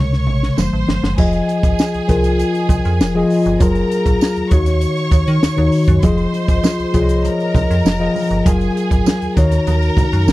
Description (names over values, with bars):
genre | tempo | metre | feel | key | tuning
lush 1970s-style soul | 99 BPM | 4/4 | straight | unclear | A4 = 440 Hz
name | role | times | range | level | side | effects
clear studio string section | second line | 0.0-10.3 s | Ab4 to Db6 | -25 LUFS | right 3 dB | none
mellow tine electric piano | accompaniment | 0.0-10.3 s | C3 to Eb5 | -17 LUFS | left 2 dB | phaser
metallic FM bass | bass | 0.0-10.3 s | F1 to Eb3 | -18 LUFS | equal | none
compact cocktail drum kit | drums | 0.1-10.3 s | crash cymbal, hi-hat, kick drum, snare drum | -17 LUFS | equal | none
congas | percussion | 0.3-1.0, 6.0-10.3 s | none | -24 LUFS | right 5 dB | none
tambourine | percussion | 0.6-10.3 s | none | -32 LUFS | right 19 dB | none
room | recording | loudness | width
little or no reverb | dry, close 1970s-style studio recording | -13 LUFS | side -17 dB against mid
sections
0.0-1.2 A section; 1.2-10.3 B section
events
drum fill 0.0-1.2; tine electric piano solo 0.0-1.2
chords
0.0 Bbm7/Db; 0.6 F7b9; 1.2 Fm7; 3.6 Gbmaj9; 4.5 Ebm7; 6.0 Fm7; 8.5 Gbmaj9; 9.4 Ebm7